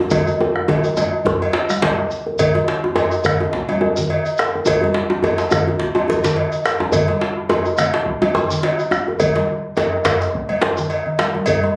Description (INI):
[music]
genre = west african traditional, West African drum ensemble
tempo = 106 BPM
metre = 4/4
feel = swing 55% on 16ths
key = none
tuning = none
[part]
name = bombo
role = percussion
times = 0.1-11.6 s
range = none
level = -26 LUFS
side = equal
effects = none
[part]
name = congas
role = percussion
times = 0.1-11.7 s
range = none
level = -27 LUFS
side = equal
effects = none
[part]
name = cowbell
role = percussion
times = 0.1-11.6 s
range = none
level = -24 LUFS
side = equal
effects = none
[part]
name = djembe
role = percussion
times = 0.1-11.7 s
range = none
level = -23 LUFS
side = equal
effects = none
[part]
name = djembe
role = percussion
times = 0.1-11.3 s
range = none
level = -24 LUFS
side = equal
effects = none
[part]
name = shekere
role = percussion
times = 0.1-11.6 s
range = none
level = -33 LUFS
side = equal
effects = none
[sound]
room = wet small room reverb, RT60 0.5 s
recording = recorded on a phone in the room, club reverb, compression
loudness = -18 LUFS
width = mono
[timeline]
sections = 0.0-2.4 A section; 2.4-11.8 B section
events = drum fill 0.1-2.4, 10.9-11.5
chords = none